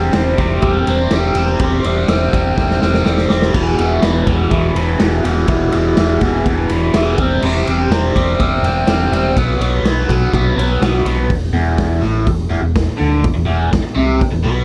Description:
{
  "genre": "garage rock duo or trio",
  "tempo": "124 BPM",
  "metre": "4/4",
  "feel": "straight",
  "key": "E minor",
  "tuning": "A4 = 440 Hz",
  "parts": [
    { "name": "overdriven electric guitar", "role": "riff", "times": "0.0-14.6 s", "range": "E2 to C4", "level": "-19 LUFS", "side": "equal", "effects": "phaser" },
    { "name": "overdriven fingered electric bass", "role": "bass", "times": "0.0-14.6 s", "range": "E1 to D2", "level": "-20 LUFS", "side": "equal", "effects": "none" },
    { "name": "raw garage drum kit", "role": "drums", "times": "0.1-14.3 s", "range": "crash cymbal, hi-hat, kick drum, ride cymbal, snare drum", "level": "-21 LUFS", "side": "equal", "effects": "none" }
  ],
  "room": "moderate club reverb, RT60 0.5 s",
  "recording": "none",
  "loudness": "-15 LUFS",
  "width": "mono",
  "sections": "0.0-11.3 A section; 11.3-14.6 B section",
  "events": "drum fill 2.6-3.5",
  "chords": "0.0 C/E; 3.5 E5; 7.2 C/E; 9.4 B5; 11.3 E5"
}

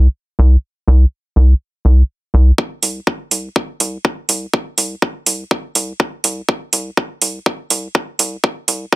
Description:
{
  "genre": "minimal techno",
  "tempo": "123 BPM",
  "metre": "4/4",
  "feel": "swing 58% on 16ths",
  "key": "unclear",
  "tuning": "A4 = 440 Hz",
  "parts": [
    { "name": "rubbery square bass", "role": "bass", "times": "0.0-8.9 s", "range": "C2", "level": "-12 LUFS", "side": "equal", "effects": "sidechain pumping, high-pass filter" },
    { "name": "electronic kick drum", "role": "drums", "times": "2.6-9.0 s", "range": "none", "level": "-16 LUFS", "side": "equal", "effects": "high-pass filter on kick, high-pass filter on room" },
    { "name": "electronic hi-hat", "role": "drums", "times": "2.8-8.8 s", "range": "none", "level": "-16 LUFS", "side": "right 4 dB", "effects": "high-pass filter on hats, high-pass filter on room" }
  ],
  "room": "little or no reverb",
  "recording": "dense, heavily limited modern master",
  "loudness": "-14 LUFS",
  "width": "side -20 dB against mid",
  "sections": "0.0-2.6 A section; 2.6-9.0 B section",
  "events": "build-up 2.6-9.0",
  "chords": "none"
}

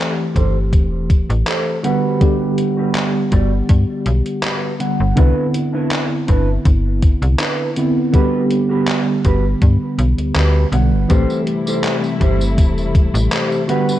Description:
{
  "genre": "vaporwave",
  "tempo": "81 BPM",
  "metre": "4/4",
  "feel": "swing 54% on 16ths",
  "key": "G major",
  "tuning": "A4 = 440 Hz",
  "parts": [
    { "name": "tine electric piano", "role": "accompaniment", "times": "0.0-14.0 s", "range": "D3 to F#5", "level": "-19 LUFS", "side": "right 1 dB", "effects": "medium tremolo, lush chorus, tape echo" },
    { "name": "mellow electric guitar", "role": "riff", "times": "0.0-14.0 s", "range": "D4 to D5", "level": "-24 LUFS", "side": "right 2 dB", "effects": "wide subtle chorus, low-pass filter, tape echo" },
    { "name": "slap-like FM bass", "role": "bass", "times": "0.4-13.3 s", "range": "E1 to G2", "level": "-16 LUFS", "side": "equal", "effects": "none" },
    { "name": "detuned 8-bit digital drum machine", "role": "drums", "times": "0.4-14.0 s", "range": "handclaps, hi-hat, tambourine", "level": "-24 LUFS", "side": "equal", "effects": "gated reverb" },
    { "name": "electronic kick drum", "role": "drums", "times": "0.4-13.1 s", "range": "none", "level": "-14 LUFS", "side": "equal", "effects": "none" },
    { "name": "dark studio string section", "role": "sustained chords", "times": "11.1-14.0 s", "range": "C3 to F#5", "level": "-24 LUFS", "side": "left 2 dB", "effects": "none" }
  ],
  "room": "little or no reverb",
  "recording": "cassette tape",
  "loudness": "-14 LUFS",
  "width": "side -13 dB against mid",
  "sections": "0.0-14.0 A section",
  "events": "filter sweep on clean electric guitar 0.0-14.0",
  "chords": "0.0 Am7; 1.8 Gmaj7; 5.2 Cmaj9; 8.1 Gmaj7; 11.1 Am7"
}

